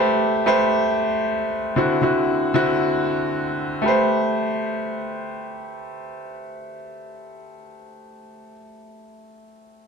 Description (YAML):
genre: disco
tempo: free time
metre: none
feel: none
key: A dorian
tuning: A4 = 440 Hz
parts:
  - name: warm concert grand piano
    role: solo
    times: 0.0-9.9 s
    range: D3 to C5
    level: -20 LUFS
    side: equal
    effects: none
room: moderate echo chamber reverb, RT60 1.7 s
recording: none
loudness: -19 LUFS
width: side -5 dB against mid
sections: 0.0-3.8 A section; 3.8-8.0 B section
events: none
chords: 0.0 Am9; 1.8 D9; 3.8 Am9